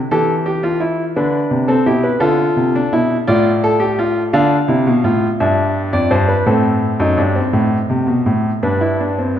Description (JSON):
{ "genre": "classical, baroque-style 3-part fugue for grand piano", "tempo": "56 BPM (dotted quarters)", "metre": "12/8", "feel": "straight", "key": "D minor", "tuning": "A4 = 436 Hz", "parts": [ { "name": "warm grand piano", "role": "solo", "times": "0.0-9.4 s", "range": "F2 to F5", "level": "-13 LUFS", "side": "equal", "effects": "none" } ], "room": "wet scoring stage reverb, RT60 2.1 s", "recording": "recorded in a church or concert hall", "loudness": "-13 LUFS", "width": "side -10 dB against mid", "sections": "0.0-9.4 A section", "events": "none", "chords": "0.1 Em; 2.2 Dm; 4.3 Dm7; 6.5 F#dim (rootless); 8.6 G", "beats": "| 0.10 1.17 2.22 3.29 | 4.35 5.40 6.47 7.54 | 8.63" }